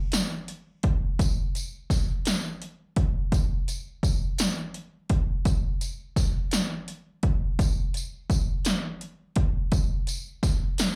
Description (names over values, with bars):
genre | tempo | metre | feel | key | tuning
gospel | 56 BPM (dotted quarters) | 6/8 | straight | none | none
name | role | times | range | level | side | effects
80s electronic pad drums | drums | 0.1-11.0 s | hi-hat, kick drum, snare drum | -27 LUFS | equal | overdrive
tambourine | percussion | 0.1-11.0 s | none | -37 LUFS | equal | none
room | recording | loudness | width
little or no reverb | live gig heard through the venue's PA, club reverb | -27 LUFS | mono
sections
0.0-11.0 A section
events
none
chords
none